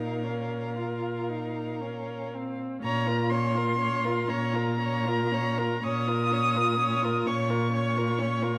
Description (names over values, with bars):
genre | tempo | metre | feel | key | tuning
classical, slow romantic movement for string quartet | 38-43 BPM (dotted quarters) | 12/8 | rubato | Bb minor | A4 = 444 Hz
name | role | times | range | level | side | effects
rich violin | melody | 0.0-8.6 s | F5 to Eb6 | -33 LUFS | equal | none
rich violin | second line | 0.0-8.6 s | Bb4 to Db5 | -36 LUFS | equal | none
rich viola | accompaniment | 0.0-8.6 s | C4 to F4 | -36 LUFS | equal | none
rich cello | bass | 0.0-8.5 s | Bb2 | -32 LUFS | equal | none
room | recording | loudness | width
moderate large studio reverb, RT60 1.5 s | dark, warm production | -28 LUFS | mono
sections
0.0-2.8 A section; 2.8-8.6 A section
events
none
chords
0.0 Bbm